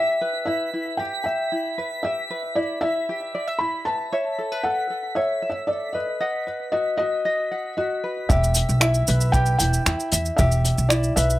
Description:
folktronica; 115 BPM; 4/4; straight; E dorian; A4 = 440 Hz
felt-muted upright piano; melody; 0.0-11.4 s; D5 to B5; -25 LUFS; left 1 dB; tape echo
tenor ukulele; arpeggios; 0.0-11.4 s; E4 to F#5; -27 LUFS; equal
twinkling granular texture; texture; 0.0-8.3 s; B6; -34 LUFS; right 2 dB; built-in reverb
upright bass; bass; 8.3-11.4 s; E1 to E2; -20 LUFS; equal
kick drum; drums; 8.3-10.5 s; -22 LUFS; equal
vintage brush drum kit; drums; 8.3-11.4 s; cabasa, finger snaps, hi-hat; -23 LUFS; equal
light reverb; -21 LUFS; side -16 dB against mid
0.0-8.3 A section; 8.3-11.4 B section
0.0 Em; 4.1 Aadd9; 6.2 B; 8.3 Em
0.47 0.99 1.51 | 2.04 2.56 3.08 3.60 | 4.12 4.64 5.17 5.69 | 6.21 6.73 7.25 7.78 | 8.30 8.82 9.34 9.86 | 10.38 10.91

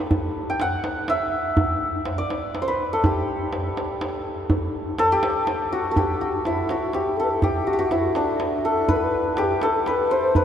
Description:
Persian modal ensemble; 82 BPM (dotted quarters); 6/8; straight; G dastgah mahur; A4 = 440 Hz
santur; melody; 0.0-10.4 s; D4 to G5; -22 LUFS; equal
tombak; percussion; 0.1-10.4 s; -26 LUFS; right 1 dB
breathy reedy low ney; second line; 5.7-10.4 s; D4 to C5; -27 LUFS; left 3 dB
wet cathedral reverb, RT60 6.0 s; recorded in a church or concert hall; -20 LUFS; side -9 dB against mid
0.0-6.0 A section; 6.0-10.4 B section
| 0.11 0.84 | 1.57 2.31 | 3.04 3.77 | 4.50 5.23 | 5.96 6.69 | 7.42 8.16 | 8.89 9.62 | 10.35

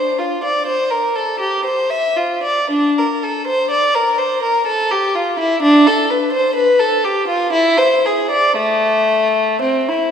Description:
classical, baroque-style suite movement for unaccompanied violin; 56-63 BPM; 3/4; rubato; D minor, A minor from 5.6 s; A4 = 439 Hz
warm violin; solo; 0.0-10.1 s; A3 to E5; -14 LUFS; equal
wet church reverb, RT60 2.7 s; recorded in a church or concert hall; -14 LUFS; side -8 dB against mid
0.0-10.1 A section
0.68 1.66 | 2.70 3.69 4.66 | 5.61 6.56 7.53 | 8.57 9.63

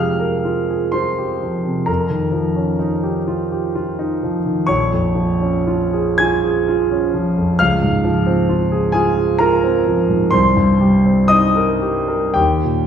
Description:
classical, impressionist solo piano; 52-69 BPM; 3/4; rubato; A4 = 439 Hz
clear concert grand piano; solo; 0.0-12.9 s; Bb1 to Ab6; -14 LUFS; equal
wet recital hall reverb, RT60 1.4 s; heard from further back in the room; -14 LUFS; side -8 dB against mid
0.0-12.9 A section
0.0 Fm11; 1.9 Eb9/F; 4.7 Bbm7; 7.6 Dbmaj7; 10.3 Cm7; 12.4 Eb
0.94 | 1.89 2.80 3.76 | 4.70 5.67 6.68 | 7.61 8.49 9.41 | 10.34 11.32 12.37

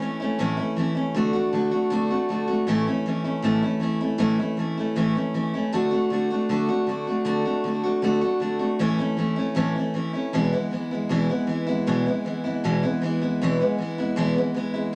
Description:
rock; 156 BPM; 4/4; straight; A major; A4 = 440 Hz
picked steel-string acoustic guitar; solo; 0.0-14.9 s; E2 to F#4; -24 LUFS; equal
light reverb; -24 LUFS; mono
0.0-14.9 A section
0.0 A; 1.1 D; 2.7 A; 5.7 D; 8.8 A; 10.3 E
0.01 0.39 0.77 | 1.15 1.53 1.91 2.29 | 2.67 3.05 3.43 3.81 | 4.19 4.57 4.96 5.34 | 5.72 6.10 6.49 6.87 | 7.25 7.64 8.02 8.41 | 8.79 9.18 9.56 9.95 | 10.33 10.72 11.10 11.49 | 11.87 12.26 12.64 13.03 | 13.41 13.80 14.18 14.57

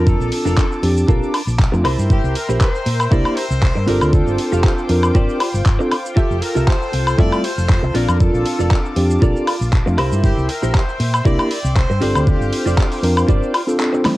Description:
nu-disco, nu disco; 118 BPM; 4/4; swing 54% on 16ths; A4 = 440 Hz
bright trumpet section; melody; 0.0-12.8 s; G4 to D5; -27 LUFS; left 1 dB; cassette tape, analog delay
mellow tine electric piano; accompaniment; 0.0-14.2 s; G3 to Bb4; -21 LUFS; equal; sidechain pumping, cassette tape
lush unison pad; sustained chords; 0.0-14.2 s; F4 to E6; -28 LUFS; left 1 dB; chorus, sidechain pumping, cassette tape
clean electric guitar; riff; 0.0-14.1 s; D4 to F5; -23 LUFS; right 2 dB; wide subtle chorus, cassette tape
hollow-body short-scale fingered electric bass; bass; 0.0-14.1 s; F1 to Bb2; -19 LUFS; equal
electronic kick drum; drums; 0.1-13.4 s; -15 LUFS; equal; overdrive, cassette tape
pop drum kit; drums; 0.1-14.2 s; handclaps, hi-hat, shaker, snare drum, woodblock; -23 LUFS; left 1 dB; overdrive, cassette tape
light reverb; home recording on cassette; -14 LUFS; side -17 dB against mid
0.0-14.2 A section
kick drops out 13.8-14.2
0.0 Bbmaj7; 1.8 C7; 3.9 G7sus4; 6.2 Fmaj9; 7.9 Bbmaj7; 10.0 C7; 12.0 G7sus4
| 0.07 0.57 1.08 1.59 | 2.10 2.61 3.12 3.62 | 4.13 4.64 5.15 5.66 | 6.17 6.68 7.18 7.69 | 8.20 8.71 9.22 9.73 | 10.23 10.74 11.25 11.76 | 12.27 12.78 13.29 13.79

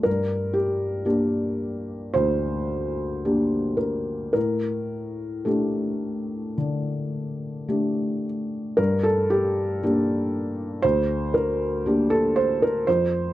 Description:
neoclassical minimalist piano; 53-60 BPM; 4/4; rubato; G minor; A4 = 440 Hz
felt-muted upright piano; solo; 0.0-13.3 s; D2 to C5; -22 LUFS; equal
little or no reverb; dry, close 1970s-style studio recording; -22 LUFS; side -15 dB against mid
0.0-8.8 A section; 8.8-13.3 B section
0.1 Gm; 4.3 Dsus4/A; 8.8 Gm
| 0.06 1.07 2.17 3.25 | 4.35 5.48 6.59 7.70 | 8.78 9.81 10.83 11.86 | 12.87

